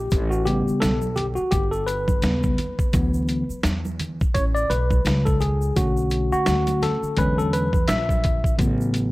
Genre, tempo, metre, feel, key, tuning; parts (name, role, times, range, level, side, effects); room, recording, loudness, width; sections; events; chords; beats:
hip hop, jazz-hop; 85 BPM; 4/4; swing 58% on 16ths; A major; A4 = 440 Hz
tine electric piano; accompaniment; 0.0-9.1 s; C#3 to E5; -23 LUFS; left 1 dB; medium stereo tremolo
upright bass; bass; 0.0-9.1 s; G1 to E2; -25 LUFS; equal
boom bap sampler-style drum kit; drums; 0.1-9.1 s; hi-hat, kick drum, snare drum; -23 LUFS; equal
egg shaker and congas; percussion; 0.1-9.1 s; -34 LUFS; right 3 dB
light reverb; vinyl crackle; -19 LUFS; side -19 dB against mid
0.0-8.6 A section
tine electric piano solo 0.0-8.6
0.1 A9; 2.9 D6; 5.8 Bm7; 7.2 E13; 8.6 A69
| 0.12 0.82 1.53 2.24 | 2.94 3.65 4.36 5.06 | 5.77 6.47 7.18 7.88 | 8.59